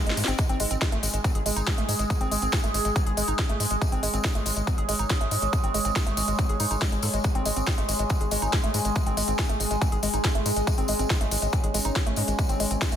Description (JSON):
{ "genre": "psychedelic trance", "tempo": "140 BPM", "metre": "4/4", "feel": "straight", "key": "G# major", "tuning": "A4 = 440 Hz", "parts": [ { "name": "overtone-sweeping drone", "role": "sustained chords", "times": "0.0-13.0 s", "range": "G#3 to C#5", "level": "-30 LUFS", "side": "right 1 dB", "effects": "chorus, built-in reverb, sidechain pumping" }, { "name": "woody wave-folded pluck", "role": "riff", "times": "0.0-13.0 s", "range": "G#3 to A4", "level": "-32 LUFS", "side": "right 1 dB", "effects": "chorus, auto-pan, cassette tape, sidechain pumping, dub echo" }, { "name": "round analog bass", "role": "bass", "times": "0.1-13.0 s", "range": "G#1 to G#2", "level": "-29 LUFS", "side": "equal", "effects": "none" }, { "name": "drum and bass drum kit", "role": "drums", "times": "0.1-13.0 s", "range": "hi-hat, snare drum", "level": "-30 LUFS", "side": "left 1 dB", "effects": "none" }, { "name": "tambourine", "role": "percussion", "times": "0.2-13.0 s", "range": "none", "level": "-35 LUFS", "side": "left 2 dB", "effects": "none" }, { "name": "electronic kick drum", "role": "drums", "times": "0.4-12.9 s", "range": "none", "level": "-26 LUFS", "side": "equal", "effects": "none" } ], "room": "light reverb, digital ambience", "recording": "dense, heavily limited modern master", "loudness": "-22 LUFS", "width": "side -9 dB against mid", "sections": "0.0-13.0 A section", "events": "drum fill 0.0-0.4", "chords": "0.0 G#5" }